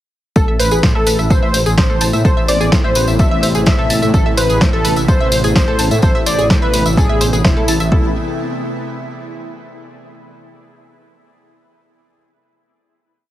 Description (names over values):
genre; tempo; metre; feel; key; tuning
melodic techno; 127 BPM; 4/4; straight; A minor; A4 = 440 Hz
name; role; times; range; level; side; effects
wide unison lead; melody; 0.4-8.1 s; E4 to E5; -20 LUFS; equal; sidechain pumping, ping-pong delay
evolving wavetable pad; sustained chords; 1.3-8.1 s; C3 to E4; -24 LUFS; equal; phaser, built-in reverb, sidechain pumping
analog pluck; arpeggios; 0.4-8.1 s; G#4 to A6; -22 LUFS; equal; chorus, cassette tape, sidechain pumping, ping-pong delay
swelling detuned saw bass; bass; 0.4-8.1 s; E1 to A2; -18 LUFS; equal; sidechain pumping
electronic kick drum; drums; 0.4-8.0 s; none; -14 LUFS; equal; none
tambourine; percussion; 0.4-7.9 s; none; -24 LUFS; left 2 dB; none
punchy analog drum machine; drums; 0.6-7.8 s; hi-hat, snare drum; -20 LUFS; equal; none
room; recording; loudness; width
light reverb, digital ambience; heavily compressed radio sound; -11 LUFS; side -13 dB against mid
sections
0.4-7.9 drop; 7.9-9.8 final chord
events
drop 0.4-7.9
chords
0.4 Amadd9; 7.9 A5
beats
| 0.36 0.83 1.30 1.78 | 2.25 2.72 3.19 3.67 | 4.14 4.61 5.08 5.56 | 6.03 6.50 6.97 7.45 | 7.92